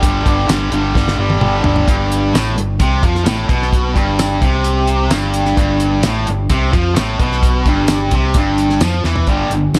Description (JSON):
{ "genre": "classic rock", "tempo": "130 BPM", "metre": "4/4", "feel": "straight", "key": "G mixolydian", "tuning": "A4 = 441 Hz", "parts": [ { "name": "tight distorted guitar", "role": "riff", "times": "0.0-9.8 s", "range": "G2 to G3", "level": "-19 LUFS", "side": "equal", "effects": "distortion" }, { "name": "overdriven fingered electric bass", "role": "bass", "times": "0.0-9.8 s", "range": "G1 to F2", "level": "-21 LUFS", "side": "equal", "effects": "none" }, { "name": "damped 70s drum kit", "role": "drums", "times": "0.0-9.8 s", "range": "hi-hat, kick drum, snare drum, tambourine, toms", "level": "-19 LUFS", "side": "equal", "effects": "none" } ], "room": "light reverb, small room ambience", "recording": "none", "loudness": "-15 LUFS", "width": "mono", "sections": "0.0-1.9 A section; 1.9-9.3 B section", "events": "drum fill 1.0-1.9, 9.0", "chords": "0.0 G5; 1.9 G; 9.3 G5" }